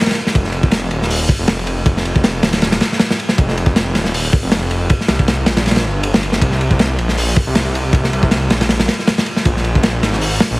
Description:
drum and bass, jungle; 158 BPM; 4/4; swing 54% on 16ths; A4 = 439 Hz
crunchy breakbeat drum kit; drums; 0.0-10.5 s; hi-hat, kick drum, ride cymbal, snare drum; -14 LUFS; equal
detuned saw bass; bass; 0.4-10.6 s; Eb1 to C2; -18 LUFS; equal
little or no reverb; heavily compressed radio sound, vinyl crackle; -13 LUFS; side -24 dB against mid
0.0-10.6 A section

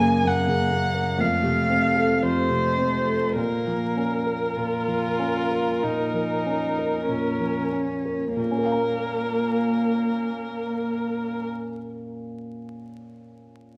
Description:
classical, slow romantic movement for piano trio; 46-64 BPM; 4/4; rubato; Bb minor; A4 = 439 Hz
dark violin; melody; 0.0-11.4 s; Bb4 to Ab5; -29 LUFS; equal
dark cello; second line; 0.0-11.4 s; A3 to F4; -30 LUFS; equal
dark baby grand piano; accompaniment; 0.0-13.8 s; F2 to Bb5; -28 LUFS; equal
wet recital hall reverb, RT60 1.5 s; vinyl crackle; -24 LUFS; mono
0.0-8.4 A section; 8.4-13.5 B section
slowing down 0.0-8.4
0.0 Gb; 1.2 F; 3.4 Bbm

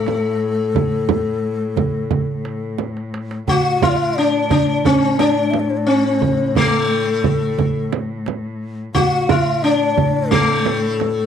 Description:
Arabic maqam ensemble; 88 BPM; 4/4; straight; A maqam huzam; A4 = 441 Hz
sitar; melody; 0.0-11.3 s; A3 to F#4-50c; -18 LUFS; left 1 dB; slapback echo
breathy low ney; second line; 0.0-11.3 s; A4 to F#5+45c; -22 LUFS; left 7 dB
rich cello; drone; 0.0-11.3 s; A2; -25 LUFS; left 2 dB
darbuka; percussion; 0.1-11.2 s; -23 LUFS; right 4 dB
frame drum; percussion; 0.1-11.2 s; -21 LUFS; right 8 dB
light reverb; dry, close 1970s-style studio recording; -15 LUFS; side -8 dB against mid
0.0-3.5 A section; 3.5-11.3 A section
drum fill 2.8-3.5

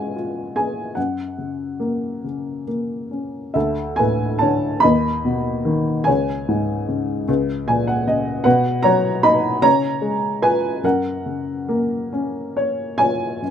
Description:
classical, lyrical solo piano; 45-52 BPM (dotted quarters); 6/8; rubato; F# major; A4 = 440 Hz
dark upright piano; solo; 0.0-13.5 s; C#2 to B5; -18 LUFS; equal
light reverb; close, detailed microphones; -18 LUFS; side -8 dB against mid
0.0-3.6 A section; 3.6-13.4 B section
upright piano fill 7.3-8.5, 12.1-13.4
0.0 C#; 1.0 F#; 3.6 D5; 4.8 B/D#; 6.1 C#5; 7.3 F#69/C#; 8.5 Badd9; 9.6 C#; 10.8 F#maj7

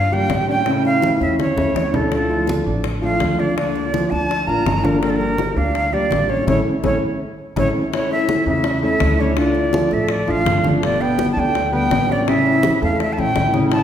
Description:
latin, Cuban son and guajira; 165 BPM; 4/4; straight; A4 = 435 Hz
bright silver concert flute; melody; 0.0-13.8 s; A4 to Bb5; -21 LUFS; right 1 dB
warm concert grand piano; arpeggios; 0.0-13.8 s; C#3 to D5; -23 LUFS; right 1 dB
upright bass; bass; 0.0-13.8 s; G1 to A2; -25 LUFS; equal
fingerpicked plugged-in steel-string acoustic guitar; accompaniment; 0.1-13.8 s; B2 to G4; -22 LUFS; left 2 dB
congas; percussion; 0.1-13.8 s; -27 LUFS; equal
bongos; percussion; 0.3-13.8 s; -26 LUFS; left 4 dB
wet recital hall reverb, RT60 1.5 s; recorded in a church or concert hall; -16 LUFS; side -9 dB against mid
0.0-7.9 A section; 7.9-13.8 B section
drum fill 1.4-2.1, 7.0-7.9; band accent 6.5-7.9
0.0 Gm; 0.7 A; 2.1 Dm; 3.6 Bb/D; 5.0 Gm; 6.5 A; 9.4 Dm; 10.8 G; 12.3 A

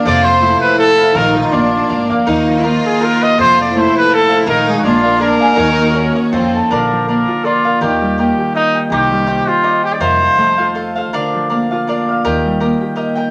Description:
mexican folk, mariachi; 164 BPM; 3/4; swing 54% on 8ths, rubato; Bb major from 6.7 s; A4 = 443 Hz
clear studio violin section; second line; 0.0-6.7 s; C4 to F4; -21 LUFS; equal
cavaquinho; accompaniment; 0.0-13.3 s; D4 to G5; -22 LUFS; equal
warm chamber violin section; sustained chords; 0.0-6.7 s; Ab3 to Eb5; -29 LUFS; equal
Celtic harp; arpeggios; 0.0-13.3 s; C3 to A5; -19 LUFS; equal
clear trumpet; melody; 0.1-10.8 s; Eb4 to Eb5; -16 LUFS; equal
upright bass; bass; 0.1-12.7 s; F1 to Ab2; -26 LUFS; equal
wet studio reverb, RT60 0.6 s; -14 LUFS; mono
0.0-6.7 A section; 6.7-13.3 B section
0.1 F; 1.2 Bbsus4; 1.5 Bb; 2.3 Ebsus2; 3.4 F; 4.5 Bb7sus4; 4.8 Bb7; 5.6 Ebm7; 6.3 F7; 6.7 Bb; 7.8 Eb; 8.9 Cm; 10.0 Fsus4; 10.4 F; 11.1 Bb; 12.2 Eb

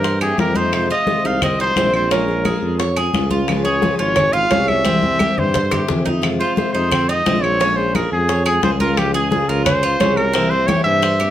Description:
latin, Cuban son and guajira; 175 BPM; 4/4; straight; F minor; A4 = 440 Hz
warm trumpet; melody; 0.0-11.3 s; G4 to F5; -19 LUFS; equal
picked steel-string acoustic guitar; accompaniment; 0.0-11.3 s; C3 to F4; -24 LUFS; left 2 dB
Cuban tres; arpeggios; 0.0-11.3 s; C4 to Db5; -22 LUFS; right 3 dB
warm tuba; bass; 0.0-11.3 s; Ab1 to G2; -22 LUFS; right 1 dB
bongos; percussion; 0.0-11.3 s; -26 LUFS; left 5 dB
congas; percussion; 0.0-11.3 s; -23 LUFS; left 2 dB
claves; percussion; 0.2-11.3 s; -28 LUFS; right 3 dB
moderate studio reverb, RT60 0.6 s; -15 LUFS; side -11 dB against mid
0.0-6.2 A section; 6.2-11.3 A section
drum fill 4.9-6.2
0.0 C7; 0.7 Fm7; 2.1 Bbm7; 3.5 Db; 4.9 C7; 6.2 Fm7; 7.6 Bbm7; 9.0 Db; 10.3 C7

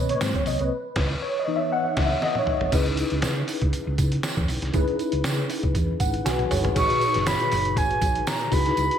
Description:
polished 1980s jazz-funk pop; 119 BPM; 4/4; swing 54% on 16ths; A4 = 440 Hz
mellow tine electric piano; accompaniment; 0.0-9.0 s; A#2 to G#5; -26 LUFS; left 1 dB; medium stereo tremolo, ensemble chorus
hollow-body short-scale fingered electric bass; bass; 0.0-8.9 s; F#1 to C#3; -27 LUFS; equal
trip hop sampler-style drum kit; drums; 0.1-9.0 s; crash cymbal, hi-hat, kick drum, snare drum, toms; -26 LUFS; equal; gated reverb
tambourine; percussion; 0.2-8.9 s; -40 LUFS; right 11 dB
concert flute; melody; 6.8-9.0 s; G#5 to C#6; -23 LUFS; right 1 dB
light reverb, digital ambience; -21 LUFS; side -9 dB against mid
0.0-2.7 A section; 2.7-6.8 B section; 6.8-9.0 C section
tine electric piano solo 0.0-2.7; band accent 0.7-2.7; drum fill 2.2-2.7, 6.3-6.8; tine electric piano fill 5.8-6.8
0.2 G#7; 0.7 C#m7; 6.8 G#m9

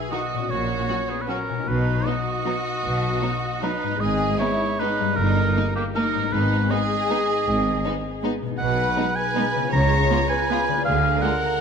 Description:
classical, orchestral ballroom waltz; 157 BPM; 3/4; uneven beats, rubato; A4 = 437 Hz
rich studio violin section; second line; 0.0-11.6 s; A#3 to C#5; -28 LUFS; left 2 dB
concert harp; arpeggios; 0.0-11.6 s; G2 to F#5; -29 LUFS; left 8 dB
rich studio violin section; melody; 0.1-11.3 s; D#4 to F#4; -34 LUFS; left 4 dB
warm oboe; second line; 0.1-11.6 s; G4 to A#5; -25 LUFS; right 2 dB
rich studio viola section; accompaniment; 0.1-11.3 s; D#3 to D#4; -31 LUFS; right 4 dB
dark studio double bass section; bass; 0.5-11.2 s; G1 to D2; -28 LUFS; right 2 dB
rich studio cello section; bass; 0.5-11.2 s; G2 to D3; -29 LUFS; right 2 dB
timpani; percussion; 9.7-10.3 s; C#3; -30 LUFS; left 1 dB
wet scoring stage reverb, RT60 1.6 s; dark, warm production; -20 LUFS; side -6 dB against mid
0.0-11.6 A section
0.0 B; 4.0 G#m; 5.2 D#/G; 6.3 G#m; 8.6 G#m7/B; 9.7 C#7; 10.9 A#7/D

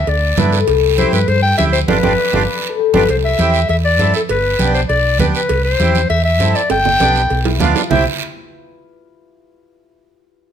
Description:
latin, cumbia; 199 BPM; 4/4; straight; C major; A4 = 440 Hz
warm clarinet; melody; 0.0-8.1 s; A4 to G5; -16 LUFS; left 2 dB
hollow-body short-scale fingered electric bass; bass; 0.0-8.1 s; G1 to G2; -17 LUFS; equal
cowbell and timbales; percussion; 0.1-8.0 s; -24 LUFS; right 6 dB
guiro; percussion; 0.1-8.0 s; -25 LUFS; right 8 dB
concert harp; second line; 0.4-8.1 s; E4 to D5; -20 LUFS; left 11 dB
accordion; accompaniment; 0.4-8.1 s; B3 to A4; -21 LUFS; right 5 dB
congas; percussion; 0.4-8.0 s; -22 LUFS; right 3 dB
light reverb; close, detailed microphones; -12 LUFS; side -8 dB against mid
0.0-3.1 A section; 3.1-7.9 B section; 7.9-9.1 C section
band accent 1.9-3.1; drum fill 2.3-3.1, 6.7-7.9
0.0 G; 0.7 C; 1.9 G7; 3.1 C; 4.3 G; 5.5 C; 6.7 G7; 7.9 C

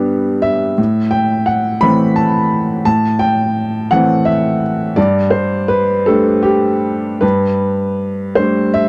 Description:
neoclassical minimalist piano; 52-59 BPM (dotted quarters); 6/8; rubato; A dorian; A4 = 440 Hz
warm upright piano; solo; 0.0-8.9 s; G2 to B5; -15 LUFS; equal
little or no reverb; dry, close 1970s-style studio recording; -15 LUFS; mono
0.0-8.9 A section
0.0 G; 0.8 Am; 5.0 Gsus2

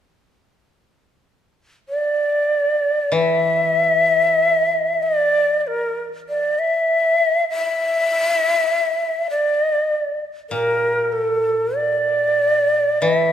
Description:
japanese traditional, Japanese chamber music; 48 BPM; 2/4; rubato; A4 = 439 Hz
breathy shakuhachi; melody; 1.9-13.3 s; A4 to E5; -16 LUFS; equal
koto; accompaniment; 3.1-6.5, 10.5-13.3 s; Bb2 to E3; -25 LUFS; left 2 dB
moderate scoring stage reverb, RT60 1.9 s; minimal, uncompressed stereo recording; -16 LUFS; side -10 dB against mid
0.7-3.2 A section; 3.2-13.3 B section

